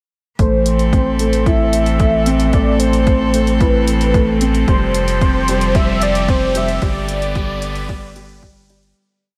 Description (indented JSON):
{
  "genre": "piano and strings electronica",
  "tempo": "112 BPM",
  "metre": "4/4",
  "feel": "straight",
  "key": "A minor",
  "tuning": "A4 = 440 Hz",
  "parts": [
    { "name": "warm velvety synth lead", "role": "melody", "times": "0.4-8.7 s", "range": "B4 to E5", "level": "-22 LUFS", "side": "equal", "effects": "chorus" },
    { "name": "bright string quartet", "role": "sustained chords", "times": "0.4-9.0 s", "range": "D3 to B4", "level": "-26 LUFS", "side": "equal", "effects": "sidechain pumping" },
    { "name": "dark grand piano", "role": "riff", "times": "0.4-9.0 s", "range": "G3 to E4", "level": "-21 LUFS", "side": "equal", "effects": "none" },
    { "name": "round analog bass", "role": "bass", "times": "0.4-8.9 s", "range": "F1 to A1", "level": "-22 LUFS", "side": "equal", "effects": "sidechain pumping" },
    { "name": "electronic hi-hat", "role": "drums", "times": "0.4-8.9 s", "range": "none", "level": "-30 LUFS", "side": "equal", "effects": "none" },
    { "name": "electronic kick drum", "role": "drums", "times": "0.4-8.5 s", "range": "none", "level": "-19 LUFS", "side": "equal", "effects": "none" },
    { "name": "riser", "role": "sound effects", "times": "3.7-9.0 s", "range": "none", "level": "-35 LUFS", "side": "equal", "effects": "none" }
  ],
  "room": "light reverb",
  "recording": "none",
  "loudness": "-15 LUFS",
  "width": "mono",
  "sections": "0.4-9.0 build",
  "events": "build-up 0.4-9.0; riser 3.7-9.0; fade-out 6.1-9.0",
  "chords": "0.4 Am; 4.7 Fadd9; 6.8 G"
}